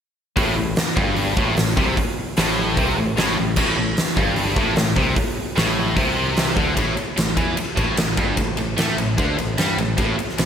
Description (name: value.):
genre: hard rock.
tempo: 150 BPM.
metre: 4/4.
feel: straight.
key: A minor.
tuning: A4 = 440 Hz.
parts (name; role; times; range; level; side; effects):
tight distorted guitar; riff; 0.4-10.5 s; G2 to A3; -25 LUFS; left 7 dB; distortion.
tight distorted guitar; riff; 0.4-10.5 s; G2 to A3; -25 LUFS; right 7 dB; distortion.
tight distorted guitar; riff; 0.4-6.8 s; G2 to D3; -28 LUFS; left 1 dB; distortion.
modern bright picked electric bass; bass; 0.4-10.5 s; G1 to A2; -26 LUFS; equal; none.
huge arena drum kit; drums; 0.4-10.5 s; crash cymbal, hi-hat, kick drum, ride cymbal, snare drum; -21 LUFS; equal; none.
room: moderate lush hall reverb, RT60 1.6 s, small room ambience.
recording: big arena sound.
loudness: -18 LUFS.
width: side -8 dB against mid.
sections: 0.4-6.8 A section; 6.8-10.5 B section.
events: none.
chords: 0.4 Am; 6.8 A5.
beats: | 0.38 0.78 1.18 1.58 | 1.98 2.38 2.78 3.18 | 3.58 3.98 4.38 4.78 | 5.18 5.58 5.98 6.38 | 6.78 7.18 7.58 7.98 | 8.38 8.78 9.18 9.58 | 9.98 10.39.